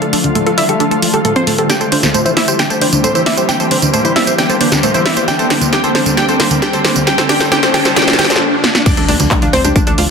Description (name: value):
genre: uplifting trance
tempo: 134 BPM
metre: 4/4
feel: straight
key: D minor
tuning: A4 = 440 Hz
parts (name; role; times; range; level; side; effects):
- wide unison pluck; melody; 0.0-10.0 s; C4 to G5; -17 LUFS; equal; sidechain pumping, tape echo
- analog pluck; second line; 0.0-10.0 s; D4 to G5; -20 LUFS; left 2 dB; chorus, sidechain pumping, dub echo
- shimmering ambient pad; sustained chords; 0.0-10.1 s; D3 to G4; -19 LUFS; left 1 dB; chorus, built-in reverb, sidechain pumping
- analog pluck; arpeggios; 0.0-10.1 s; D3 to D5; -18 LUFS; right 2 dB; chorus, sidechain pumping, dub echo
- big-room dance drum kit; drums; 0.0-10.1 s; crash cymbal, handclaps, hi-hat, snare drum, tambourine; -16 LUFS; equal; sidechain pumping on hats, sidechain pumping on perc, sidechain pumping on cymbals
- riser, noise sweep and impact; sound effects; 0.2-10.1 s; none; -20 LUFS; equal; none
- electronic kick drum; drums; 8.9-9.8 s; none; -14 LUFS; equal; none
- tight sequencer bass; bass; 9.0-10.1 s; D2; -18 LUFS; equal; sidechain pumping
room: wet digital room reverb, RT60 1.1 s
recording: dense, heavily limited modern master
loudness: -10 LUFS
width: side -5 dB against mid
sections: 0.0-8.9 A section; 8.9-10.1 B section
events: build-up 0.0-8.9; filter sweep on synth pluck 0.0-8.9; filter sweep on synth arpeggio sound 0.0-8.9; riser 0.2-8.9; drum fill 1.7-8.4, 8.6; noise sweep 7.1-8.9; drop 8.9-10.1; impact 8.9-10.1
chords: 0.0 Dm; 1.7 C; 5.3 Gm; 8.9 Dm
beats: 0.35 0.80 1.25 | 1.70 2.15 2.59 3.04 | 3.49 3.94 4.38 4.83 | 5.28 5.73 6.17 6.62 | 7.07 7.52 7.97 8.41 | 8.86 9.31 9.76